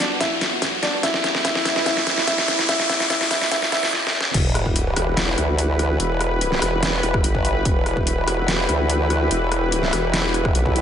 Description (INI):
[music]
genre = heavy wobble dubstep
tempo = 145 BPM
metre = 4/4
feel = half-time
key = E minor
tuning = A4 = 440 Hz
[part]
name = felt-muted upright piano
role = melody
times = 0.0-3.9 s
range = D4 to E5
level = -25 LUFS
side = equal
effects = digital delay
[part]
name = lush unison pad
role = sustained chords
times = 0.0-10.8 s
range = E2 to B4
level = -25 LUFS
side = equal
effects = chorus, sidechain pumping
[part]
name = dubstep drum kit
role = drums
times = 0.0-10.8 s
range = crash cymbal, hi-hat, rim click, snare drum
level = -22 LUFS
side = equal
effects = none
[part]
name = riser and sub drop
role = sound effects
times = 0.0-6.0 s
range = none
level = -26 LUFS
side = equal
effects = none
[part]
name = electronic kick drum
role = drums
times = 0.2-10.7 s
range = none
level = -23 LUFS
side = equal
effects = none
[part]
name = formant-sweep wobble bass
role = bass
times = 4.3-10.8 s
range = E1 to D2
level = -22 LUFS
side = equal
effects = chorus, overdrive
[sound]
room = light reverb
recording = high-pass filter, nothing above 11.0 kHz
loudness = -18 LUFS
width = side -9 dB against mid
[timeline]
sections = 0.0-4.3 A section; 4.3-10.8 B section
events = build-up 0.0-4.3; drum fill 0.0-3.9, 3.9-4.3; riser 0.0-3.9; filter sweep on analog synth pad 0.0-4.3; drop 4.3-10.8; impact 4.3-6.0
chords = 0.0 Emadd9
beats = 0.20 0.62 | 1.03 1.45 1.86 2.27 | 2.69 3.10 3.52 3.93 | 4.34 4.76 5.17 5.58 | 6.00 6.41 6.83 7.24 | 7.65 8.07 8.48 8.89 | 9.31 9.72 10.14 10.55